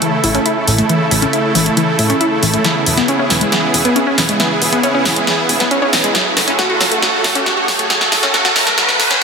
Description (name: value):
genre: uplifting trance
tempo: 137 BPM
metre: 4/4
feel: straight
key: F# minor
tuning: A4 = 440 Hz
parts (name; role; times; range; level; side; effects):
- wide unison pluck; arpeggios; 0.0-9.1 s; E3 to F#4; -17 LUFS; left 2 dB; dub echo
- punchy analog drum machine; drums; 0.0-9.2 s; hi-hat, snare drum; -15 LUFS; equal; none
- plucky analog bass; bass; 0.2-9.1 s; E1 to A2; -21 LUFS; equal; none
- riser; sound effects; 5.1-9.2 s; none; -21 LUFS; equal; none
room: wet lush hall reverb, RT60 1.7 s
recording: dense, heavily limited modern master, high-pass filter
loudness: -11 LUFS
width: side -5 dB against mid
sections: 0.0-9.2 A section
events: build-up 0.0-9.2; filter sweep on synth arpeggio sound 0.0-9.2; filter sweep 0.0-9.2; drum fill 2.6-9.2; riser 5.1-9.2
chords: 0.0 A; 2.6 E6; 6.2 F#m